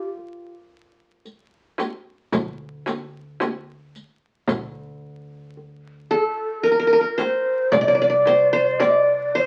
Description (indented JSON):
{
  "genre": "Arabic maqam ensemble",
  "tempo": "111 BPM (eighths)",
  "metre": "10/8",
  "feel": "straight",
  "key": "D maqam bayati",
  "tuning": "A4 = 437 Hz",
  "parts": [
    { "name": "qanun", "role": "melody", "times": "0.0-9.5 s", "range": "F4 to D5", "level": "-21 LUFS", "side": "equal", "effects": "none" },
    { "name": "breathy mellow low ney", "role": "second line", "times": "0.0-9.5 s", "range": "G4 to E5-48c", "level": "-25 LUFS", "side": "equal", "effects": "none" },
    { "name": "darbuka", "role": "percussion", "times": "0.2-9.1 s", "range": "none", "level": "-36 LUFS", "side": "equal", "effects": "none" },
    { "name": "riq", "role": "percussion", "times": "1.3-9.5 s", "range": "none", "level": "-34 LUFS", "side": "equal", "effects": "none" },
    { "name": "frame drum", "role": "percussion", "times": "1.8-9.1 s", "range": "none", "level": "-28 LUFS", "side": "equal", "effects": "none" },
    { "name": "upright bass", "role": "bass", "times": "2.3-9.4 s", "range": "C2 to D2", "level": "-42 LUFS", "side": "equal", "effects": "none" }
  ],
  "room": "moderate studio reverb, RT60 0.6 s",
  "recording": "very old 78 rpm record, vinyl crackle",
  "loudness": "-21 LUFS",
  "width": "mono",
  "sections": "0.0-9.5 A section",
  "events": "none",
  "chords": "none"
}